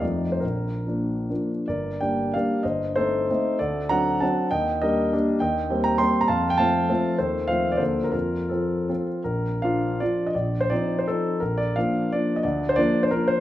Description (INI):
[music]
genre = classical, romantic triple-time dance for piano with dotted rhythms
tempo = 132-218 BPM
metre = 3/4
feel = rubato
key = G minor, Bb major from 5.4 s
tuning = A4 = 440 Hz
[part]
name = warm grand piano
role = solo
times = 0.0-13.4 s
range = G1 to C6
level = -21 LUFS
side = equal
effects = none
[sound]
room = wet recital hall reverb, RT60 1.6 s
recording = none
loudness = -21 LUFS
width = side -13 dB against mid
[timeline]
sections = 0.0-1.7 A section; 1.7-9.3 B section; 9.3-13.4 A section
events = none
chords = 0.0 F7; 0.4 Bb; 1.7 Gm; 2.6 Adim/G; 3.6 D7; 4.5 Ebmaj7; 5.4 Cm7/Eb; 6.3 F; 7.2 F7/Eb; 7.8 Bb/D; 8.1 F; 9.3 Bb; 10.4 F7/Bb; 11.4 Bb; 12.5 Bb/D